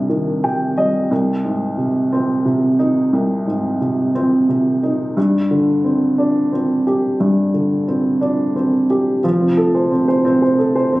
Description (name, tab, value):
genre	six-eight pop ballad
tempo	59 BPM (dotted quarters)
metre	6/8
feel	straight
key	unclear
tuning	A4 = 439 Hz
part	dark upright piano	accompaniment	0.0-11.0 s	C2 to G5	-14 LUFS	equal	none
part	saturated sub bass	bass	9.2-11.0 s	F1 to Bb1	-28 LUFS	equal	none
room	light reverb, small room ambience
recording	recorded on a phone in the room, club reverb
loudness	-14 LUFS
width	side -19 dB against mid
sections	0.0-9.2 A section; 9.2-11.0 B section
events	upright piano fill 0.1-1.1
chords	0.0 Cm; 1.1 Ab/C; 5.2 Gsus4; 9.2 F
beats	0.10 | 1.11 2.12 | 3.14 4.16 | 5.17 6.19 | 7.20 8.22 | 9.24 10.26